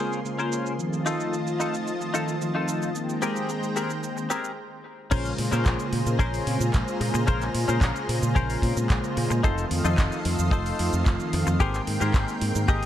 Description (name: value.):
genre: nu-disco, nu disco.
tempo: 111 BPM.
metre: 4/4.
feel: straight.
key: Bb dorian.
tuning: A4 = 440 Hz.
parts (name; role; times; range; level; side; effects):
mellow synth brass; accompaniment; 0.0-12.9 s; Db3 to G5; -29 LUFS; equal; chorus, sidechain pumping, tape echo.
lush unison pad; sustained chords; 0.0-12.9 s; F3 to C6; -33 LUFS; equal; chorus, sidechain pumping.
direct-recorded clean electric guitar; riff; 0.0-12.9 s; C4 to Eb5; -30 LUFS; left 4 dB; analog chorus, low-pass filter, tape echo.
pop drum kit; drums; 0.1-12.9 s; cabasa, crash cymbal, handclaps, hi-hat; -34 LUFS; right 1 dB; none.
fingered electric bass with an envelope filter; bass; 5.1-12.9 s; F1 to Bb2; -26 LUFS; equal; tube saturation, sidechain pumping.
kick drum; drums; 5.1-12.8 s; none; -22 LUFS; equal; none.
room: light reverb.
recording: dark, warm production, low-pass filter.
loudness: -23 LUFS.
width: side -11 dB against mid.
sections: 0.0-5.1 A section; 5.1-12.9 B section.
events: stop 4.6-5.1; drop 5.1-12.9.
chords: 0.0 Bbm9; 0.8 F7; 3.0 Abmaj9; 5.1 Bbm9; 9.4 F7; 11.6 Abmaj9.